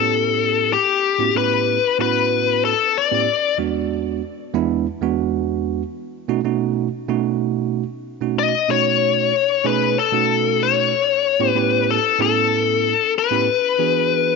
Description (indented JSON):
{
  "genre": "blues",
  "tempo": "94 BPM",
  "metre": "4/4",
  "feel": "straight",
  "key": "unclear",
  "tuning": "A4 = 440 Hz",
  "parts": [
    { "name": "biting lead guitar", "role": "melody", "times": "0.0-3.6, 8.4-14.4 s", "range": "G4 to D#5", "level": "-17 LUFS", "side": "left 10 dB", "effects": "overdrive, slapback echo" },
    { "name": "bell-like tine electric piano", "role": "accompaniment", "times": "0.0-14.4 s", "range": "E2 to A4", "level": "-22 LUFS", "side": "right 12 dB", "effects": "none" }
  ],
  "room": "moderate plate reverb, RT60 3.8 s",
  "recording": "1960s-style stereo with parts hard left and right, nothing above 7.5 kHz",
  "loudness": "-16 LUFS",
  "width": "side -4 dB against mid",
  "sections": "0.0-14.4 A section",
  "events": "none",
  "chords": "0.0 A9; 3.3 E9; 5.8 B9; 10.9 A9; 13.5 E9",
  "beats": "0.07 | 0.71 1.35 1.99 2.63 | 3.26 3.90 4.54 5.18 | 5.82 6.46 7.09 7.73 | 8.37 9.01 9.64 10.28 | 10.92 11.56 12.20 12.84 | 13.47 14.11"
}